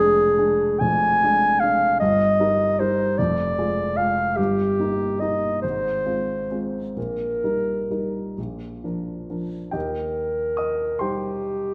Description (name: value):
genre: classical, romantic duo for clarinet and grand piano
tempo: 42-52 BPM (dotted quarters)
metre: 6/8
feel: rubato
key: Eb major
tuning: A4 = 440 Hz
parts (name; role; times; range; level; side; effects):
- dark clarinet; melody; 0.0-11.7 s; G4 to Ab5; -23 LUFS; equal; none
- warm grand piano; accompaniment; 0.0-11.7 s; F1 to Eb6; -28 LUFS; equal; none
room: wet recital hall reverb, RT60 1.6 s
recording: none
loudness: -23 LUFS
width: mono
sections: 0.0-9.7 A section; 9.7-11.7 A section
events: none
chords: 0.0 Ddim/F; 2.0 Eb/G; 3.2 Ddim/F; 4.4 Eb/G; 5.6 Fm/Ab; 7.0 Eb/Bb; 8.4 Bb; 9.7 Eb